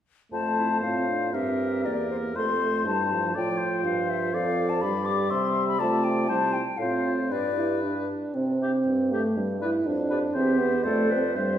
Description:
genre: quick classical-period movement for wind quintet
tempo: 120 BPM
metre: 2/4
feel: rubato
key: F major, C major from 4.3 s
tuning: A4 = 440 Hz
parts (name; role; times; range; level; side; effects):
- concert flute; melody; 0.3-11.6 s; C5 to D6; -29 LUFS; left 6 dB; none
- warm oboe; second line; 0.3-11.6 s; G4 to E5; -32 LUFS; left 3 dB; none
- warm French horn; accompaniment; 0.3-11.6 s; F3 to E4; -28 LUFS; right 1 dB; none
- warm clarinet; accompaniment; 0.3-11.6 s; C4 to C5; -31 LUFS; right 4 dB; none
- mellow bassoon; bass; 0.3-11.6 s; E2 to C3; -31 LUFS; right 2 dB; none
room: wet recital hall reverb, RT60 1.7 s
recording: heard from further back in the room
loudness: -23 LUFS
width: side -10 dB against mid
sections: 0.3-8.4 A section; 8.4-11.6 B section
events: none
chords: 0.3 F; 1.3 C7/G; 2.4 F; 3.4 F/A; 4.3 Dm/F; 4.8 G; 5.3 C; 5.8 G5/C; 6.3 C; 6.8 F/A; 7.3 G; 8.4 C5; 9.4 N.C.; 9.9 G7(no3)/F; 10.4 C/E; 10.9 Dm7/F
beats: | 0.33 0.84 | 1.35 1.85 | 2.36 2.86 | 3.36 3.85 | 4.34 4.83 | 5.32 5.81 | 6.30 6.81 | 7.32 7.85 | 8.37 8.88 | 9.38 9.87 | 10.36 10.86 | 11.37

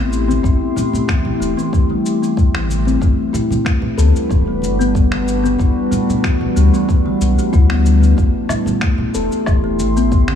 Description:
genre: organic downtempo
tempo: 93 BPM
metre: 4/4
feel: swing 53% on 16ths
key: A dorian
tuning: A4 = 440 Hz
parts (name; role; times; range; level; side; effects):
- warbly tape-like pad; sustained chords; 0.0-10.4 s; G3 to C6; -21 LUFS; equal; chorus, built-in reverb, sidechain pumping
- kalimba; arpeggios; 0.0-10.4 s; E3 to A4; -19 LUFS; left 2 dB; low-pass filter, tape echo
- warm sub bass; bass; 0.0-10.4 s; D1 to D2; -16 LUFS; left 1 dB; sidechain pumping
- electronic cabasa, finger snaps and woodblock; drums; 0.1-10.4 s; none; -28 LUFS; left 2 dB; none
- congas; percussion; 0.3-10.4 s; none; -25 LUFS; right 2 dB; none
- electronic kick drum; drums; 0.4-10.3 s; none; -15 LUFS; left 1 dB; none
room: light reverb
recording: small room ambience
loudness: -13 LUFS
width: side -8 dB against mid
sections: 0.0-10.4 A section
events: none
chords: 0.0 Am7; 3.0 Gmaj7; 8.2 Am7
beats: | 0.43 1.08 1.72 2.37 | 3.02 3.66 4.30 4.95 | 5.59 6.24 6.89 7.53 | 8.18 8.82 9.47 10.11

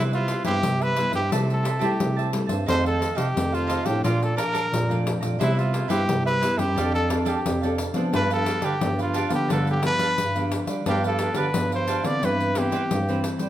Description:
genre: samba and choro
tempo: 88 BPM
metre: 4/4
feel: straight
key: C major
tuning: A4 = 439 Hz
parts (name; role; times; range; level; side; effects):
- clear trumpet; melody; 0.0-13.3 s; E4 to D5; -26 LUFS; equal; none
- cavaquinho; accompaniment; 0.0-13.5 s; D4 to Bb5; -30 LUFS; right 5 dB; none
- nylon-string guitar; accompaniment; 0.0-13.5 s; F2 to A4; -28 LUFS; left 2 dB; none
- mellow bass clarinet; bass; 0.0-13.5 s; F2 to G3; -26 LUFS; right 1 dB; none
- pandeiro; percussion; 0.1-13.5 s; none; -30 LUFS; left 3 dB; none
room: moderate large studio reverb, RT60 1.1 s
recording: none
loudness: -21 LUFS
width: side -12 dB against mid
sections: 0.0-13.5 A section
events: none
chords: 0.0 Cmaj7; 1.3 Am7/C; 2.7 F7; 4.0 Bbmaj7; 5.4 Cmaj7; 6.8 F6; 8.1 G7; 12.2 Cmaj7/G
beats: 0.64 1.32 2.00 | 2.69 3.37 4.05 4.73 | 5.41 6.09 6.77 7.46 | 8.14 8.82 9.50 10.18 | 10.86 11.54 12.22 12.90

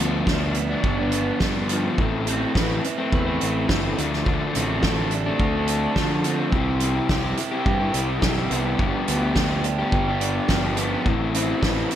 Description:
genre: indie rock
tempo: 106 BPM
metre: 4/4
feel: straight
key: G mixolydian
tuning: A4 = 439 Hz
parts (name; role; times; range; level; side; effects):
- crunchy overdriven guitar; riff; 0.0-12.0 s; G2 to B4; -27 LUFS; right 5 dB; wide subtle chorus, digital delay
- raw garage guitar; riff; 0.0-12.0 s; E3 to G4; -25 LUFS; left 4 dB; overdrive
- fuzz picked electric bass; bass; 0.0-11.9 s; G1 to D3; -26 LUFS; equal; overdrive
- loose indie drum kit; drums; 0.3-12.0 s; hi-hat, kick drum, snare drum; -25 LUFS; right 1 dB; none
room: moderate lush hall reverb, RT60 1.8 s, studio reverb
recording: bright 1980s-style digital production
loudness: -20 LUFS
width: side -10 dB against mid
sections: 0.0-12.0 A section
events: none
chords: 0.0 G7; 2.0 Amadd9; 4.0 Dm7; 6.5 Cmaj7; 8.8 G7; 11.1 Amadd9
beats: 0.28 0.85 1.42 | 1.99 2.56 3.13 3.70 | 4.27 4.83 5.40 5.97 | 6.54 7.10 7.67 8.24 | 8.80 9.37 9.94 10.50 | 11.07 11.63

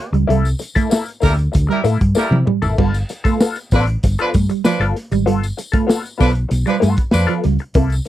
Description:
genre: funk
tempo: 97 BPM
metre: 4/4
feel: straight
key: unclear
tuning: A4 = 440 Hz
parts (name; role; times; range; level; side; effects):
- clear horn section; second line; 0.0-7.3 s; F3 to B4; -21 LUFS; right 1 dB; slapback echo
- direct-recorded clean electric guitar; accompaniment; 0.1-8.1 s; Bb3 to A4; -21 LUFS; left 6 dB; wah, lush chorus
- mellow electric guitar; riff; 0.1-8.1 s; E3 to C4; -21 LUFS; right 7 dB; wide subtle chorus
- hollow-body short-scale fingered electric bass; bass; 0.1-8.0 s; G1 to C3; -17 LUFS; equal; none
- crunchy breakbeat drum kit; drums; 0.1-8.1 s; crash cymbal, hi-hat, kick drum, snare drum, toms; -18 LUFS; equal; none
- tambourine; percussion; 0.5-8.1 s; none; -35 LUFS; left 4 dB; none
room: little or no reverb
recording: dry, close 1970s-style studio recording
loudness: -14 LUFS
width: side -13 dB against mid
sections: 0.0-8.1 A section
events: drum fill 2.2-2.8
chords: 0.0 C13; 2.8 G9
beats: | 0.29 0.92 1.54 2.16 | 2.78 3.40 4.03 4.65 | 5.27 5.89 6.51 7.13 | 7.75

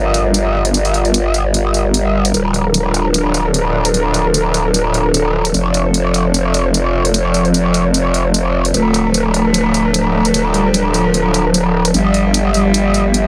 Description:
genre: heavy wobble dubstep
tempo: 150 BPM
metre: 4/4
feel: swing 54% on 16ths, half-time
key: D minor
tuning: A4 = 442 Hz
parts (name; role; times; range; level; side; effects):
- evolving wavetable pad; sustained chords; 0.0-13.3 s; F3 to Bb4; -22 LUFS; equal; phaser, built-in reverb, vintage 12-bit sampler grit
- growl bass; bass; 0.0-13.3 s; D1 to G1; -17 LUFS; equal; chorus, overdrive
- electronic hi-hat; drums; 0.1-13.2 s; none; -22 LUFS; equal; none
- warm cello; melody; 8.7-13.3 s; F3 to A3; -19 LUFS; equal; vintage 12-bit sampler grit, delay
room: light reverb, digital ambience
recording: heavily compressed radio sound, multiband compression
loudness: -15 LUFS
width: mono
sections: 0.0-13.3 A section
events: none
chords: 0.0 Gm7; 2.3 Dm; 5.5 F; 8.7 Dm; 11.9 Gm7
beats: 0.34 | 0.74 1.14 1.54 1.94 | 2.34 2.74 3.14 3.54 | 3.94 4.34 4.74 5.14 | 5.54 5.94 6.34 6.74 | 7.14 7.54 7.94 8.34 | 8.74 9.14 9.54 9.94 | 10.34 10.74 11.14 11.54 | 11.94 12.34 12.74 13.14

